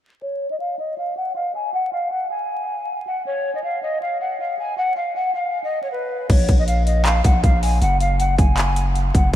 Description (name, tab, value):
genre	hip hop, trap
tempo	158 BPM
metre	4/4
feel	half-time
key	Bb phrygian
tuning	A4 = 440 Hz
part	mellow hollow jazz flute	melody	0.2-9.3 s	Cb5 to Ab5	-22 LUFS	left 1 dB	low-pass filter, tape echo
part	long sustained 808-style bass	bass	6.3-9.4 s	Gb1 to Bb1	-19 LUFS	equal	none
part	trap drum kit	drums	6.3-9.4 s	crash cymbal, handclaps, hi-hat, kick drum	-18 LUFS	equal	none
room	moderate cathedral reverb, RT60 6.4 s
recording	dreamy mix soaked in reverb, vinyl crackle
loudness	-18 LUFS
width	side -12 dB against mid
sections	0.2-6.3 A section; 6.3-9.4 B section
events	filter sweep on flute 0.2-6.3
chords	0.2 N.C.; 6.3 Bb5; 7.8 Gbsus2